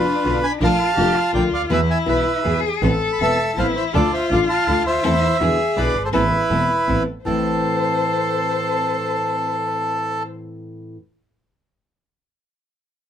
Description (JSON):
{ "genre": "tango", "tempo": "163 BPM", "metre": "3/4", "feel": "rubato", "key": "A harmonic minor", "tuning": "A4 = 440 Hz", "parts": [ { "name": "bandoneon", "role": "melody", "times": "0.0-10.2 s", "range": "E4 to B5", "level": "-20 LUFS", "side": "right 2 dB", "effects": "none" }, { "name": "warm cello", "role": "second line", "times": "0.0-10.2 s", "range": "D4 to C5", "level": "-24 LUFS", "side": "left 5 dB", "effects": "none" }, { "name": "nylon-string guitar", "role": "accompaniment", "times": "0.0-11.0 s", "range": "A2 to F4", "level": "-24 LUFS", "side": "left 2 dB", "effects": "none" }, { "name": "dark studio string section", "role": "stabs", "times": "0.0-10.2 s", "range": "B3 to B4", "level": "-31 LUFS", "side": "equal", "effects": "none" }, { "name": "clear double bass", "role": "bass", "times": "0.0-7.4 s", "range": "E1 to E2", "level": "-23 LUFS", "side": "right 2 dB", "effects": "none" } ], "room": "light reverb", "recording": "close, detailed microphones", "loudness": "-17 LUFS", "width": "side -9 dB against mid", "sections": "0.0-7.3 A section; 7.3-9.5 B section", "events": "none", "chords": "0.0 Bdim; 0.6 Bbmaj7; 1.7 E; 2.8 Amadd9; 3.9 Dm; 5.0 Am/E; 5.4 E7; 6.1 Amadd9; 7.3 Am" }